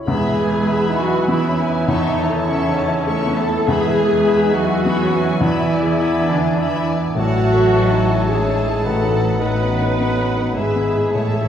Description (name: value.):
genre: classical.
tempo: 95-110 BPM.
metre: 3/4.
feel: rubato.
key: E major.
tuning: A4 = 440 Hz.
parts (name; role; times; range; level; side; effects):
warm baby grand piano; melody; 0.0-11.5 s; E2 to B4; -21 LUFS; left 2 dB; none.
clear clarinet; second line; 0.0-11.5 s; B4 to D5; -29 LUFS; equal; none.
rich chamber violin section; melody; 0.1-11.5 s; E5 to C#6; -33 LUFS; left 2 dB; none.
dark cor anglais; second line; 0.1-11.5 s; D#5 to E5; -29 LUFS; right 2 dB; none.
mellow silver concert flute; second line; 0.1-11.5 s; G#5 to B5; -29 LUFS; left 1 dB; none.
rich studio violin section; second line; 0.1-11.5 s; G#4 to G#5; -30 LUFS; left 2 dB; none.
warm bassoon; accompaniment; 0.1-11.5 s; E3 to A3; -29 LUFS; right 1 dB; none.
warm studio viola section; accompaniment; 0.1-11.5 s; C#4 to B4; -23 LUFS; right 1 dB; none.
warm French horn section; sustained chords; 0.1-11.5 s; C#4 to B4; -24 LUFS; left 2 dB; none.
dark studio cello section; bass; 0.1-11.5 s; C#3 to B3; -25 LUFS; right 2 dB; none.
warm studio double bass section; bass; 0.1-11.5 s; G#1 to E2; -25 LUFS; right 4 dB; none.
timpani; percussion; 0.1-0.9 s; E2; -31 LUFS; equal; none.
room: wet scoring stage reverb, RT60 1.9 s.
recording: heard from further back in the room.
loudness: -15 LUFS.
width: side -9 dB against mid.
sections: 0.1-11.5 A section.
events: none.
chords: 0.1 E; 1.9 A/E; 3.7 E; 5.4 E7; 7.2 A; 8.8 B7/A; 10.6 E/G#.